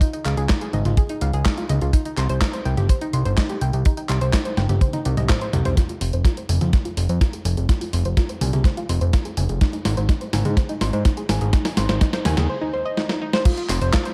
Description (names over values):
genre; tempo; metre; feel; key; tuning
italo disco; 125 BPM; 4/4; straight; F minor; A4 = 440 Hz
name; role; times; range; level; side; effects
soft round pluck; arpeggios; 0.0-14.1 s; Eb4 to C6; -31 LUFS; equal; chorus, digital delay
clean 12-bit digital drum machine; drums; 0.0-14.1 s; crash cymbal, handclaps, hi-hat, snare drum, toms; -28 LUFS; equal; overdrive, gated reverb
kick drum; drums; 0.0-14.0 s; none; -20 LUFS; equal; none
fat analog bass; bass; 0.3-13.9 s; F1 to Ab2; -24 LUFS; equal; tube saturation
room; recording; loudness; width
little or no reverb; vinyl crackle, faint mains hum; -21 LUFS; mono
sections
0.0-5.8 A section; 5.8-13.5 B section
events
drum fill 4.8-5.8, 5.8-12.5, 13.0-13.5; filter sweep on synth arpeggio sound 5.8-13.5; break 12.5-13.5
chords
0.0 Dbadd9; 1.9 Cm; 5.8 Fm; 9.6 Ab; 13.5 F5